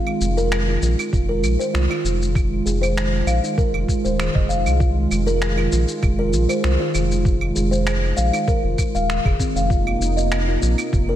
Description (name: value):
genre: organic downtempo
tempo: 98 BPM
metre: 4/4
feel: straight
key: F minor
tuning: A4 = 439 Hz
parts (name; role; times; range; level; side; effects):
- warm analog pad; sustained chords; 0.0-11.2 s; C3 to F4; -25 LUFS; right 2 dB; chorus, sidechain pumping
- buzzing kalimba; arpeggios; 0.0-11.2 s; C4 to F5; -24 LUFS; left 1 dB; ping-pong delay, slapback echo
- electronic claves, shaker and finger snaps; drums; 0.1-11.1 s; none; -28 LUFS; right 1 dB; slapback echo
- round analog bass; bass; 0.2-11.2 s; Eb1 to C2; -21 LUFS; equal; none
- electronic kick drum; drums; 1.1-11.1 s; none; -20 LUFS; equal; none
room: light reverb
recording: none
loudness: -17 LUFS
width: side -11 dB against mid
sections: 0.0-11.2 A section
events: none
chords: 0.0 Fm7; 9.7 Cm7